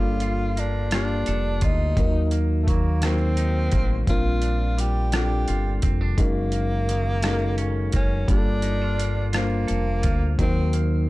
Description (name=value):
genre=slow six-eight R&B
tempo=57 BPM (dotted quarters)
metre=6/8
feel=straight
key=unclear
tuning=A4 = 440 Hz
part: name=breathy tenor saxophone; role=melody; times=0.0-10.8 s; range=A3 to G4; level=-29 LUFS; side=equal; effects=none
part: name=semi-hollow electric guitar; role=second line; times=0.0-11.1 s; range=Gb2 to A4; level=-34 LUFS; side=right 4 dB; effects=none
part: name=tine electric piano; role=accompaniment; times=0.0-11.1 s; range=Gb3 to C5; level=-28 LUFS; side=left 3 dB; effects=none
part: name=deep dub fingered electric bass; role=bass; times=0.0-11.1 s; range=F1 to Eb2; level=-24 LUFS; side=equal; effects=none
part: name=dusty soul sampler-style drum kit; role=drums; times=0.2-10.9 s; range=hi-hat, kick drum, rim click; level=-24 LUFS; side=equal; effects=none
room=digital ambience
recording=dark, warm production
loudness=-20 LUFS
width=side -19 dB against mid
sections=0.0-11.1 A section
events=none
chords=0.0 Gm9; 2.0 Ebm; 4.1 Bb6; 6.2 Gb6; 8.3 Gm9; 10.4 Ebm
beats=0.91 | 1.97 3.02 | 4.07 5.12 | 6.18 7.23 | 8.28 9.33 | 10.39